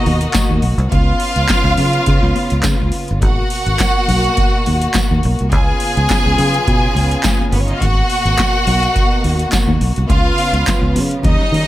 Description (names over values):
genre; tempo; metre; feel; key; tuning
disco; 105 BPM; 4/4; straight; unclear; A4 = 439 Hz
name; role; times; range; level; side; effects
clear studio violin section; second line; 0.0-11.7 s; B3 to G#5; -18 LUFS; equal; none
dark studio string section; sustained chords; 0.0-11.7 s; B2 to F#4; -21 LUFS; equal; none
fingered electric bass; bass; 0.1-11.6 s; G1 to D#3; -16 LUFS; equal; none
electro analog drum machine; drums; 0.1-11.7 s; handclaps, hi-hat, kick drum, snare drum; -18 LUFS; equal; none
congas; percussion; 0.1-11.7 s; none; -25 LUFS; left 5 dB; none
tambourine; percussion; 0.3-10.8 s; none; -28 LUFS; right 6 dB; none
room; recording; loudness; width
little or no reverb; none; -12 LUFS; side -15 dB against mid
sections
0.0-11.7 A section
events
none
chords
0.0 G#m9 (rootless); 0.9 C#7; 3.2 G#m9; 5.5 C#7; 7.8 G#m9; 10.1 C#7